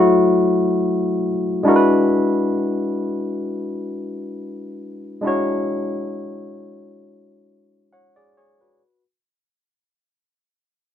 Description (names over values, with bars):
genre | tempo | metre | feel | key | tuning
R&B | free time | none | none | unclear | A4 = 436 Hz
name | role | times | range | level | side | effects
barky tine electric piano | solo | 0.0-9.0 s | F#3 to F#5 | -18 LUFS | left 1 dB | overdrive
room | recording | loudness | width
moderate studio ambience, RT60 0.5 s | band playing live in one room | -17 LUFS | side -10 dB against mid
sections
0.0-1.6 A section; 1.6-8.8 B section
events
tine electric piano solo 0.0-1.6; fade-out 1.6-8.8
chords
0.0 F#m7; 1.6 E9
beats
free time